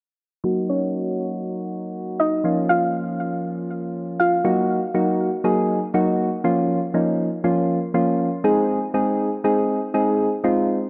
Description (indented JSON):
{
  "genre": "pop",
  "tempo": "120 BPM",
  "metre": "4/4",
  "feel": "straight",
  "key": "Eb dorian",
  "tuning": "A4 = 440 Hz",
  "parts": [
    { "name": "soft electric-piano-like synth keys", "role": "accompaniment", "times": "0.4-10.8 s", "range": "F3 to Ab4", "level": "-22 LUFS", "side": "equal", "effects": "chorus, low-pass filter" },
    { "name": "soft round pluck", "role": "melody", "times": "0.7-4.3 s", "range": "Db4 to F5", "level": "-25 LUFS", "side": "equal", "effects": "chorus, low-pass filter, delay" }
  ],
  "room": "moderate lush hall reverb, RT60 3.0 s",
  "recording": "worn, warbling old tape, cassette tape, warbly pitch drift",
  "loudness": "-22 LUFS",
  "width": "mono",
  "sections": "0.4-4.4 A section; 4.4-10.9 B section",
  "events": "filter sweep 0.4-4.4",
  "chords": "0.4 Ebm; 2.4 Bbm; 4.4 Ebm; 6.4 Bbm; 8.4 Ab"
}